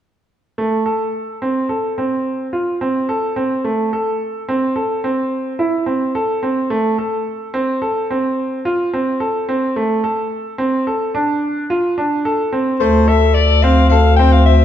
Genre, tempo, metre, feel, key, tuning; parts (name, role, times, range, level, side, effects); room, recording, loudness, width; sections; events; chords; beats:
contemporary instrumental, contemporary; 216 BPM (eighths); 11/8; straight; A4 = 440 Hz
bright concert grand piano; arpeggios; 0.6-14.6 s; A3 to A4; -17 LUFS; right 1 dB
growling soprano saxophone; melody; 12.8-14.6 s; C5 to G5; -16 LUFS; left 7 dB
mellow bass clarinet; bass; 12.8-14.6 s; D2; -12 LUFS; equal
moderate recital hall reverb, RT60 1.5 s; dark, warm production; -15 LUFS; side -10 dB against mid
0.6-12.8 A section; 12.8-14.6 B section
0.6 Am; 6.7 F (rootless); 9.8 D5; 12.8 Dm7
| 0.58 0.86 1.14 1.41 1.69 1.97 2.25 2.53 2.81 3.08 3.36 | 3.64 3.92 4.20 4.48 4.75 5.03 5.31 5.59 5.87 6.15 6.42 | 6.70 6.98 7.26 7.54 7.81 8.09 8.37 8.65 8.92 9.20 9.48 | 9.76 10.04 10.31 10.59 10.87 11.14 11.42 11.70 11.98 12.25 12.53 | 12.81 13.09 13.36 13.64 13.92 14.19 14.47